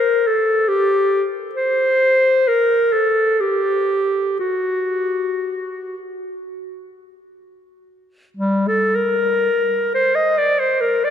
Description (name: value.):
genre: classical, free, expressive piece for unaccompanied clarinet.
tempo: 18-48 BPM (dotted quarters).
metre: 6/8.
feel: rubato.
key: G minor.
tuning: A4 = 440 Hz.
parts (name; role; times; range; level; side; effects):
bright clarinet; solo; 0.0-11.1 s; G3 to Eb5; -16 LUFS; left 1 dB; none.
room: wet cathedral reverb, RT60 4.4 s.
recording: none.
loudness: -16 LUFS.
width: side -9 dB against mid.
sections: 0.0-8.4 A section; 8.4-11.1 B section.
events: none.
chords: none.